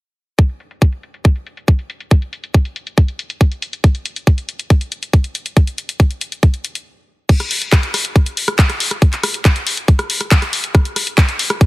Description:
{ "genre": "trance", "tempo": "139 BPM", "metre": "4/4", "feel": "straight", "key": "none", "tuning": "none", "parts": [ { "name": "electronic kick drum", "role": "drums", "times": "0.4-11.7 s", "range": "none", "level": "-10 LUFS", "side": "equal", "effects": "none" }, { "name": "garage drum kit", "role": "drums", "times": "0.4-11.7 s", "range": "crash cymbal, handclaps, hi-hat, rim click", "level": "-19 LUFS", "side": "left 1 dB", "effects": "low-pass filter on hats, low-pass filter on cymbals, low-pass filter on snare" } ], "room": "little or no reverb", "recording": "heavily compressed radio sound, multiband compression", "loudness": "-14 LUFS", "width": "side -20 dB against mid", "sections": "0.4-7.3 A section; 7.3-11.7 B section", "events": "stop 6.9-7.3", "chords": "none" }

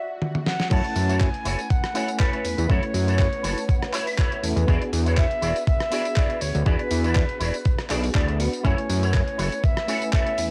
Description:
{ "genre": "nu-disco, nu disco", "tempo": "121 BPM", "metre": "4/4", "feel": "swing 54% on 16ths", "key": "F# minor", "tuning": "A4 = 441 Hz", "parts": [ { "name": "bright reedy concert flute", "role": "melody", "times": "0.0-10.5 s", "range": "B4 to A5", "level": "-31 LUFS", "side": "equal", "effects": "cassette tape, analog delay" }, { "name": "swell", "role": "sound effects", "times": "0.0-0.7 s", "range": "none", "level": "-42 LUFS", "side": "equal", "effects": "none" }, { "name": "dusty soul sampler-style drum kit", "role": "drums", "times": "0.2-10.5 s", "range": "crash cymbal, handclaps, hi-hat, rim click, snare drum, tambourine, toms", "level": "-33 LUFS", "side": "equal", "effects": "cassette tape" }, { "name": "reed electric piano", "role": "accompaniment", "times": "0.7-10.5 s", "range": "A3 to G#5", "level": "-34 LUFS", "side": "equal", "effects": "fast tremolo, cassette tape" }, { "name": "dark studio string section", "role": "sustained chords", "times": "0.7-10.5 s", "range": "B3 to B4", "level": "-40 LUFS", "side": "equal", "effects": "sidechain pumping, cassette tape" }, { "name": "electric guitar with an envelope filter", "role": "riff", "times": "0.7-10.4 s", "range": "E4 to A5", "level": "-33 LUFS", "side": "equal", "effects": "ensemble chorus, cassette tape" }, { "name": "fat analog bass", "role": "bass", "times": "0.7-10.5 s", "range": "E1 to F#2", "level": "-26 LUFS", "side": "equal", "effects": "high-pass filter" }, { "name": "electronic kick drum", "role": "drums", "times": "0.7-10.2 s", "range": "none", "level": "-24 LUFS", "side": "equal", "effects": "high-pass filter on kick, cassette tape" } ], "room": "light reverb, digital ambience", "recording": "home recording on cassette", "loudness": "-23 LUFS", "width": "mono", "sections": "0.7-10.5 A section", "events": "break 0.0-0.7; swell 0.0-0.7; drum fill 0.2-0.7; drop 0.7-10.5; clean electric guitar fill 3.2-4.7, 7.7-8.6", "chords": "0.0 N.C.; 0.7 F#m7; 4.7 E9; 8.6 F#m7" }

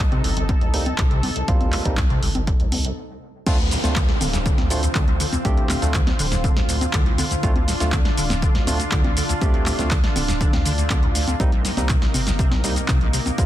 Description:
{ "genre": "acid house", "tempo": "121 BPM", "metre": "4/4", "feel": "straight", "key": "D phrygian", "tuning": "A4 = 439 Hz", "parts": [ { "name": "lush unison pad", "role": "sustained chords", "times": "0.0-13.5 s", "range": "C3 to A4", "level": "-28 LUFS", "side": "equal", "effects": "chorus, sidechain pumping" }, { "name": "acid bass, square", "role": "riff", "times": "0.0-13.4 s", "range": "D1 to D3", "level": "-26 LUFS", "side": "equal", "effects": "overdrive, ensemble chorus, dub echo" }, { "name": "saturated sub bass", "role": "bass", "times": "0.0-13.5 s", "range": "D1 to D2", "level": "-25 LUFS", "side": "equal", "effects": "tube saturation, sidechain pumping" }, { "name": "punchy analog drum machine", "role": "drums", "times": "0.1-13.5 s", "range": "congas, crash cymbal, handclaps, hi-hat, shaker, snare drum", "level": "-25 LUFS", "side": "equal", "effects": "none" }, { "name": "electronic kick drum", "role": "drums", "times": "0.5-13.5 s", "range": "none", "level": "-20 LUFS", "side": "equal", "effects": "none" }, { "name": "barky tine electric piano", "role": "stabs", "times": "0.7-13.5 s", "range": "G3 to G4", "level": "-30 LUFS", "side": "right 2 dB", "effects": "dub echo" }, { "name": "downlifter", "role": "sound effects", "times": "3.5-7.4 s", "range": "none", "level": "-31 LUFS", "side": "right 1 dB", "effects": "none" } ], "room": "little or no reverb", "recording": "dense, heavily limited modern master", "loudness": "-18 LUFS", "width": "side -13 dB against mid", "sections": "0.0-3.5 A section; 3.5-13.5 B section", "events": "stop 3.0-3.5; drop 3.5-13.5", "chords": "0.0 Cm7; 3.5 Dm7; 11.4 Cm7" }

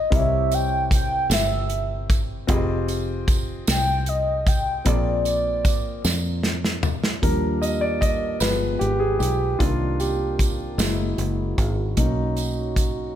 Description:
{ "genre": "slow gospel", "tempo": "51 BPM (dotted quarters)", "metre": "6/8", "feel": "straight", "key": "Eb major", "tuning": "A4 = 440 Hz", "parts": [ { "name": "mellow horn-like synth lead", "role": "melody", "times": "0.0-6.8 s", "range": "D5 to G5", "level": "-24 LUFS", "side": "equal", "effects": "chorus" }, { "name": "warm concert grand piano", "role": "accompaniment", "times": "0.0-13.2 s", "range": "Bb2 to Eb5", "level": "-26 LUFS", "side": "left 1 dB", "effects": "none" }, { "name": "fingered electric bass", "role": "bass", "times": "0.0-13.1 s", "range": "F1 to F2", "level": "-26 LUFS", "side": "equal", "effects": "none" }, { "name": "natural country drum kit", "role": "drums", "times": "0.1-13.0 s", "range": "hi-hat, kick drum, snare drum, toms", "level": "-23 LUFS", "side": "equal", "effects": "none" }, { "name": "tambourine", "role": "percussion", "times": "0.5-13.1 s", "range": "none", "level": "-33 LUFS", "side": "right 6 dB", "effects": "none" }, { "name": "mellow French horn section", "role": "sustained chords", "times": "7.2-13.2 s", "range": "Eb3 to G4", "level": "-33 LUFS", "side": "right 3 dB", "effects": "none" } ], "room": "light reverb", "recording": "none", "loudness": "-20 LUFS", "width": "side -10 dB against mid", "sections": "0.0-7.2 A section; 7.2-13.2 B section", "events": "drum fill 6.0-7.2; grand piano solo 7.2-13.2", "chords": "0.1 C7b9; 2.5 Fm9; 4.9 Bb9; 7.2 Ebmaj7; 8.4 G7b9; 9.6 Cm7; 10.8 Gb7; 12.0 Bmaj7" }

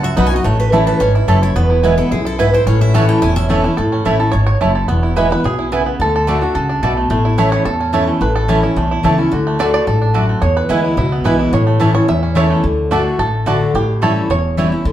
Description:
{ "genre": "bluegrass", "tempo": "217 BPM", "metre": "4/4", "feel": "straight", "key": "A major", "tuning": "A4 = 440 Hz", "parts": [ { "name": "bluegrass banjo", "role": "melody", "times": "0.0-14.9 s", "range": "A3 to E5", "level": "-20 LUFS", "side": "right 3 dB", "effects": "slapback echo, plate reverb" }, { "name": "picked steel-string acoustic guitar", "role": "melody", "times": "0.0-3.4 s", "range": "E4 to G#5", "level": "-19 LUFS", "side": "right 2 dB", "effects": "plate reverb" }, { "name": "picked steel-string acoustic guitar", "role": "accompaniment", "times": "0.0-14.9 s", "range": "E2 to F#4", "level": "-16 LUFS", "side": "left 2 dB", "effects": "none" }, { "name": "upright bass", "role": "bass", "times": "0.0-14.9 s", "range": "E1 to E2", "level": "-18 LUFS", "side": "equal", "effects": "none" }, { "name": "mandolin", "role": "stabs", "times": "0.2-14.7 s", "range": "A3 to B5", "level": "-20 LUFS", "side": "right 4 dB", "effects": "slapback echo" } ], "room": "wet large studio reverb, RT60 0.9 s", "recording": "heard from further back in the room", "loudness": "-12 LUFS", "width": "side -12 dB against mid", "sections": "0.0-3.8 A section; 3.8-12.6 A section; 12.6-14.9 A section", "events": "steel-string acoustic guitar solo 0.0-3.8; five-string banjo solo 3.8-14.9", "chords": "0.5 A; 1.6 E; 2.7 A; 4.9 E; 6.0 D; 7.1 A; 9.3 D; 10.4 E; 11.5 A; 12.6 D; 13.7 A7" }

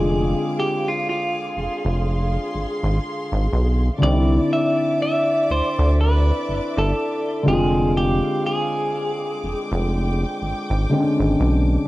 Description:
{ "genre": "R&B", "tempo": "61 BPM", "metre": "4/4", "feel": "swing 58% on 16ths", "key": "unclear", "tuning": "A4 = 440 Hz", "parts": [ { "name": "clean electric guitar", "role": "melody", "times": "0.0-11.4 s", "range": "F4 to E5", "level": "-24 LUFS", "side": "equal", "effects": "tremolo, cassette tape, tape echo" }, { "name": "felt-muted upright piano", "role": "accompaniment", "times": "0.0-11.9 s", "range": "D3 to F4", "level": "-23 LUFS", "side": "left 1 dB", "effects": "none" }, { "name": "warm studio string section", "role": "sustained chords", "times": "0.0-11.9 s", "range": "Ab3 to D6", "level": "-30 LUFS", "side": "equal", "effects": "none" }, { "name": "rubbery square bass", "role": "bass", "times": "0.0-11.8 s", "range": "F1 to D2", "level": "-20 LUFS", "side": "equal", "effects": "none" } ], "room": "small room ambience", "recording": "home recording on cassette", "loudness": "-18 LUFS", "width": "side -18 dB against mid", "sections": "0.0-11.9 A section", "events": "none", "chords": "0.0 Fm6; 4.0 Cadd9; 7.5 Fm6" }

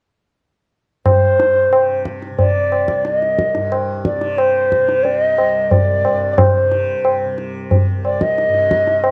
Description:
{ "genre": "indian classical, Hindustani", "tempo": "90 BPM", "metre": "4/4", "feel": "straight", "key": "unclear", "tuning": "A4 = 440 Hz", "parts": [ { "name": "mellow bansuri", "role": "melody", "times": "1.1-9.1 s", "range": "C5 to Eb5", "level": "-18 LUFS", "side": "equal", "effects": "none" }, { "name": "tanpura", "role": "drone", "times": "1.1-9.1 s", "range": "C2 to C3", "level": "-30 LUFS", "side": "equal", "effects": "cassette tape" }, { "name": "tabla", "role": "percussion", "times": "1.1-9.1 s", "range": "none", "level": "-19 LUFS", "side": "equal", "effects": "none" } ], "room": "light reverb, small room reverb", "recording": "home recording on cassette", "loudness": "-16 LUFS", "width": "mono", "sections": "1.1-9.1 A section", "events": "none", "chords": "none" }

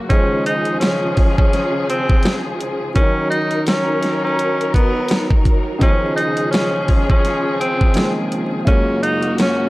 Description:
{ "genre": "hip hop, boom-bap hip-hop", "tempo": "84 BPM", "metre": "4/4", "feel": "swing 60% on 16ths", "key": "Db major", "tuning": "A4 = 441 Hz", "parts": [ { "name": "dark grand piano", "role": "accompaniment", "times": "0.0-9.7 s", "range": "Db2 to C5", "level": "-23 LUFS", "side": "equal", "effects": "high-pass filter, low-pass filter" }, { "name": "warm studio string section", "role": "stabs", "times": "0.0-9.7 s", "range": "Db3 to Bb4", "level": "-23 LUFS", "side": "left 1 dB", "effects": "high-pass filter, low-pass filter, tape echo" }, { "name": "breathy tenor saxophone", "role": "melody", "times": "0.1-9.7 s", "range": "Cb4 to Eb4", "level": "-20 LUFS", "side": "equal", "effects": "high-pass filter, low-pass filter" }, { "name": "dubstep drum kit", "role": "drums", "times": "0.1-9.6 s", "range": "hi-hat, kick drum, snare drum", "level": "-16 LUFS", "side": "equal", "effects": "none" } ], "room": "studio ambience", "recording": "dry, gritty hardware recording, vinyl crackle", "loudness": "-15 LUFS", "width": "side -19 dB against mid", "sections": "0.0-9.7 A section", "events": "none", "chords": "0.1 Dbmaj7; 3.0 Ebm7; 5.8 Dbmaj7; 8.7 Gbmaj7" }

